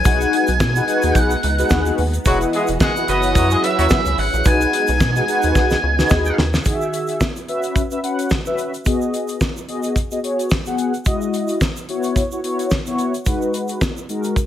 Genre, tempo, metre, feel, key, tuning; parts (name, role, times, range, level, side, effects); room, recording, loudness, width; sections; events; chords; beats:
early-eighties boogie funk; 109 BPM; 4/4; swing 56% on 16ths; B major; A4 = 440 Hz
octave-fuzz lead guitar; melody; 0.0-6.4 s; D#5 to G#5; -21 LUFS; equal; distortion, tape echo
mellow synth brass; accompaniment; 0.0-14.4 s; D#3 to F#5; -21 LUFS; left 2 dB; chorus
soft string machine; sustained chords; 0.0-6.6 s; E3 to D#5; -27 LUFS; equal; ensemble chorus
rubbery square bass; bass; 0.0-6.6 s; E1 to B2; -20 LUFS; equal
egg shaker; percussion; 0.0-14.5 s; -36 LUFS; right 7 dB
damped 70s drum kit; drums; 0.1-14.5 s; hi-hat, kick drum, snare drum; -20 LUFS; equal; gated reverb
clear horn section; second line; 2.3-3.9 s; F#3 to B4; -22 LUFS; equal
light reverb, small room ambience; -16 LUFS; side -11 dB against mid
0.0-6.7 A section; 6.7-14.5 B section
drum fill 5.6-6.7
0.1 B6; 2.3 Emaj9; 3.1 F#7sus4; 4.5 B6; 6.7 Emaj9; 7.5 F#7sus4; 8.9 B6; 11.1 Emaj9; 11.9 F#7sus4; 13.3 B6
| 0.05 0.60 1.15 1.71 | 2.25 2.81 3.36 3.91 | 4.46 5.01 5.56 6.11 | 6.66 7.21 7.76 8.31 | 8.86 9.41 9.96 10.51 | 11.06 11.61 12.16 12.71 | 13.26 13.81 14.37